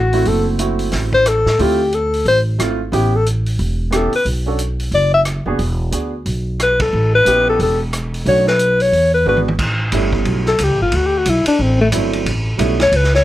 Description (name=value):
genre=jazz, small-group swing and bop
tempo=180 BPM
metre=4/4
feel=swing 62% on 8ths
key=A mixolydian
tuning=A4 = 440 Hz
part: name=dark alto saxophone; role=melody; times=0.0-13.2 s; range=A3 to E5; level=-14 LUFS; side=left 2 dB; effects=none
part: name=upright bass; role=bass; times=0.0-13.2 s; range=E1 to A2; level=-18 LUFS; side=right 1 dB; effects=none
part: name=clear baby grand piano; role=accompaniment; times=0.1-12.8 s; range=F#3 to A4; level=-21 LUFS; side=right 4 dB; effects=none
part: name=vintage drum kit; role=drums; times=0.1-13.2 s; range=crash cymbal, hi-hat, kick drum, ride cymbal, rim click, snare drum, toms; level=-24 LUFS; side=right 1 dB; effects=none
room=light reverb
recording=close, detailed microphones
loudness=-14 LUFS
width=side -14 dB against mid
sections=0.0-9.6 A section; 9.6-13.2 B section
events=band accent 6.8; drum fill 9.3-9.6; alto saxophone solo 9.6-13.2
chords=0.0 D9 (rootless); 1.6 Dm7; 2.9 A9; 4.3 Bm; 5.6 E9; 6.9 A9; 8.3 Bm7; 8.9 E7; 9.6 A9; 10.9 D9; 12.3 A9